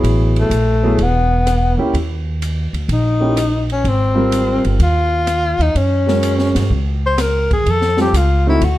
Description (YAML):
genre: jazz, small-group swing and bop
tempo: 126 BPM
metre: 4/4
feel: swing 68% on 8ths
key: unclear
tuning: A4 = 440 Hz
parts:
  - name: warm concert grand piano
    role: accompaniment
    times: 0.0-8.6 s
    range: Gb3 to Bb4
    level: -20 LUFS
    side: right 1 dB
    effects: none
  - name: upright bass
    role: bass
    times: 0.0-8.8 s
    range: E1 to G2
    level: -16 LUFS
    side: equal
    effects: none
  - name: open jazz drum kit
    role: drums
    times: 0.0-8.8 s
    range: hi-hat, kick drum, ride cymbal, rim click, snare drum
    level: -25 LUFS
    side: equal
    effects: none
  - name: breathy tenor saxophone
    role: melody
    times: 0.4-8.8 s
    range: A3 to C5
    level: -17 LUFS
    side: left 2 dB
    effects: none
room: light reverb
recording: dark, warm production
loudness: -13 LUFS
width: side -15 dB against mid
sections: 0.0-8.8 A section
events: none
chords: 0.0 A69; 1.9 Eb5; 3.8 Abmaj9; 5.8 Gbadd9; 7.7 Fadd9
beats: | 0.03 0.50 0.98 1.46 | 1.94 2.41 2.89 3.37 | 3.84 4.32 4.80 5.28 | 5.75 6.23 6.71 7.18 | 7.66 8.14 8.61